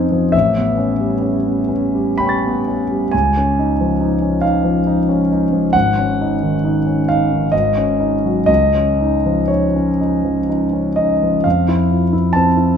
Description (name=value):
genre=classical, impressionist solo piano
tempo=59-70 BPM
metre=3/4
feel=rubato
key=unclear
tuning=A4 = 440 Hz
part: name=warm concert grand piano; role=solo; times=0.0-12.8 s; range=Ab1 to A6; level=-14 LUFS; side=equal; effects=none
room=wet recital hall reverb, RT60 1.6 s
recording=minimal, uncompressed stereo recording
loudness=-14 LUFS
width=side -7 dB against mid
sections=0.0-11.4 A section; 11.4-12.8 B section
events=none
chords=0.3 A9; 3.1 Dbadd9; 5.7 Ab7sus4; 8.5 Dbadd9; 11.4 Fmaj7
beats=| 0.34 1.22 2.20 | 3.13 4.01 4.87 | 5.74 6.63 7.53 | 8.48 9.50 10.48 | 11.45 12.34